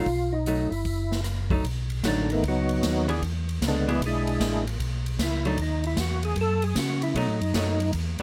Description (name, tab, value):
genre	soul jazz organ trio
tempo	152 BPM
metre	4/4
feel	swing 65% on 8ths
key	B mixolydian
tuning	A4 = 440 Hz
part	percussive tonewheel organ	melody	0.0-7.9 s	D3 to A4	-30 LUFS	equal	slow rotary speaker, overdrive, chorus vibrato
part	archtop guitar, miked and amplified	accompaniment	0.0-8.2 s	E3 to G#4	-30 LUFS	equal	none
part	mellow tonewheel organ	bass	0.0-8.2 s	F#1 to C#3	-30 LUFS	equal	chorus vibrato, slow rotary speaker
part	swinging big-band drum kit	drums	0.1-8.2 s	hi-hat, kick drum, ride cymbal, rim click, snare drum	-34 LUFS	equal	none
room	light reverb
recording	none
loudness	-26 LUFS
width	mono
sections	0.0-1.6 A section; 1.6-8.2 B section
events	tonewheel organ solo 1.6-8.2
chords	0.1 B7; 0.9 F#m7; 1.6 B7; 3.2 E7; 4.8 B; 6.4 F#5; 7.2 B7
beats	| 0.07 0.46 0.86 1.25 | 1.65 2.04 2.43 2.83 | 3.22 3.61 4.01 4.40 | 4.79 5.19 5.58 5.97 | 6.37 6.76 7.15 7.54 | 7.94